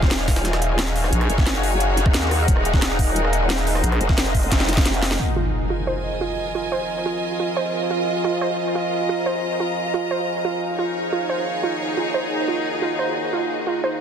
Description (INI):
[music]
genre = dark technical drum and bass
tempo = 177 BPM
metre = 4/4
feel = straight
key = F phrygian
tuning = A4 = 441 Hz
[part]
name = deep dark ambient pad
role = sustained chords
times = 0.0-14.0 s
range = Eb4 to Ab5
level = -27 LUFS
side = equal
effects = chorus, built-in reverb, sidechain pumping
[part]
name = growl bass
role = bass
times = 0.0-5.2 s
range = Eb1 to Eb2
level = -22 LUFS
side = equal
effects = chorus, overdrive, sidechain pumping
[part]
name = drum and bass drum kit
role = drums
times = 0.0-5.2 s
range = hi-hat, rim click, snare drum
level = -24 LUFS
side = right 1 dB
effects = none
[part]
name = electronic kick drum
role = drums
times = 0.0-4.8 s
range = none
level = -19 LUFS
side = equal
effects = none
[part]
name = rich studio string section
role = texture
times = 0.0-14.0 s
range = Eb4 to Bb5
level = -26 LUFS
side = equal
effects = sidechain pumping
[part]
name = jungle sampler-style drum kit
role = drums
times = 0.1-5.2 s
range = hi-hat, snare drum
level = -32 LUFS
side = equal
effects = none
[part]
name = growling FM bass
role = bass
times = 1.1-1.3, 3.8-4.0 s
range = Bb1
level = -19 LUFS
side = equal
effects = none
[part]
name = impact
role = sound effects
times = 5.2-6.5 s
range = none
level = -26 LUFS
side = equal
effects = none
[part]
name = warbly dusty pluck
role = arpeggios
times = 5.4-13.9 s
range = F4 to C5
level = -25 LUFS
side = right 4 dB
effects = chorus, sidechain pumping, tape echo
[sound]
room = light reverb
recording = dense, heavily limited modern master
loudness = -19 LUFS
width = side -8 dB against mid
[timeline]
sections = 0.0-5.2 A section; 5.2-14.0 B section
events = drop 0.0-5.2; drum fill 4.5-5.2; break 4.9-5.2; impact 5.2-6.5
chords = 0.0 Ebmadd9; 5.2 Fm; 10.6 Ebmadd9